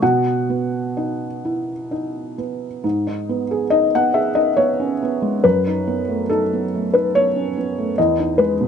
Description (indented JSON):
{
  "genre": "neoclassical minimalist piano",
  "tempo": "63-72 BPM",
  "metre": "3/4",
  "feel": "rubato",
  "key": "G# minor",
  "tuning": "A4 = 440 Hz",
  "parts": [
    { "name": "felt-muted upright piano", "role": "solo", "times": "0.0-8.7 s", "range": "E2 to F#5", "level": "-17 LUFS", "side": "equal", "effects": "none" }
  ],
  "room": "light reverb",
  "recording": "dark, warm production, nothing above 10.9 kHz",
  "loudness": "-17 LUFS",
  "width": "side -7 dB against mid",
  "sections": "0.0-2.8 A section; 2.8-8.7 B section",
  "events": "none",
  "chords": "0.0 B; 2.8 G#m; 5.4 B7/F#; 8.0 Emaj7"
}